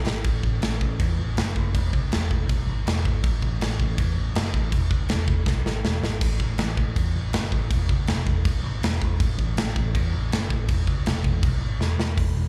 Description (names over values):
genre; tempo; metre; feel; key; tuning
punk rock; 161 BPM; 4/4; straight; unclear; A4 = 440 Hz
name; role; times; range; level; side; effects
overdriven picked electric bass; bass; 0.1-12.5 s; E1 to E2; -27 LUFS; equal; none
big rock drum kit; drums; 0.1-12.3 s; crash cymbal, hi-hat, kick drum, snare drum, splash cymbal; -27 LUFS; equal; none
room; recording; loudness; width
little or no reverb; live gig heard through the venue's PA, club reverb; -24 LUFS; mono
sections
0.2-12.2 A section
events
drum fill 0.0, 5.5-6.2, 11.8-12.2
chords
none